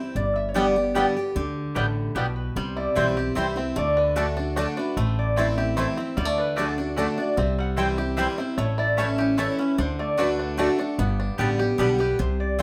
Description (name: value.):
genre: bluegrass.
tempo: 150 BPM.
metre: 3/4.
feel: straight.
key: G major.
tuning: A4 = 439 Hz.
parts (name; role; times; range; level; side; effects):
lap resonator guitar; melody; 0.0-12.6 s; G4 to G5; -30 LUFS; equal; none.
picked steel-string acoustic guitar; accompaniment; 0.0-12.6 s; G2 to G4; -29 LUFS; equal; none.
upright bass; bass; 0.2-12.6 s; G1 to D2; -30 LUFS; equal; none.
mandolin; stabs; 0.5-12.6 s; A3 to A5; -30 LUFS; equal; none.
bluegrass banjo; melody; 0.6-12.2 s; G3 to G4; -35 LUFS; equal; none.
room: moderate large studio reverb, RT60 0.9 s.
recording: none.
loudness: -24 LUFS.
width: mono.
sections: 0.0-2.6 A section; 2.6-12.2 B section.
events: none.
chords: 0.2 G; 2.6 C; 3.8 D; 5.0 Am; 6.2 D; 7.4 C; 8.6 A; 9.8 D; 11.0 Gadd9.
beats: | 0.15 0.55 0.95 | 1.36 1.76 2.16 | 2.56 2.96 3.36 | 3.76 4.16 4.57 | 4.97 5.37 5.77 | 6.17 6.57 6.97 | 7.37 7.78 8.18 | 8.58 8.98 9.38 | 9.78 10.19 10.59 | 10.99 11.39 11.79 | 12.19 12.60.